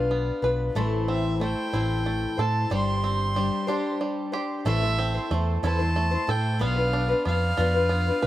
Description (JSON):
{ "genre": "folk", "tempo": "62 BPM (dotted quarters)", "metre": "6/8", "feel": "straight", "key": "A minor", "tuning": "A4 = 440 Hz", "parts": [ { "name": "warm fiddle", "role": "melody", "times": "0.0-8.3 s", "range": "E5 to C6", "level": "-30 LUFS", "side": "right 2 dB", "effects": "none" }, { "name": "picked twelve-string acoustic guitar", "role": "accompaniment", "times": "0.0-8.3 s", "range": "A2 to C5", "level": "-27 LUFS", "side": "left 4 dB", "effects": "slapback echo" }, { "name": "bluegrass banjo", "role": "arpeggios", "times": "0.0-8.3 s", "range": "G3 to B4", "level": "-32 LUFS", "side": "right 6 dB", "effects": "slapback echo" }, { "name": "picked electric bass", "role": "bass", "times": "0.0-8.3 s", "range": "G1 to A2", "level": "-26 LUFS", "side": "equal", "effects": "none" } ], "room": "little or no reverb", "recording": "recorded outdoors, with no room sound", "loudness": "-23 LUFS", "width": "side -14 dB against mid", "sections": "0.0-4.7 A section; 4.7-8.3 B section", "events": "break 3.7-4.7", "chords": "0.0 Bdim; 0.8 Am; 2.7 Gsus4; 4.7 Am; 6.6 Bdim", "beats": "| 0.76 1.74 | 2.71 3.69 | 4.66 5.63 | 6.61 7.58" }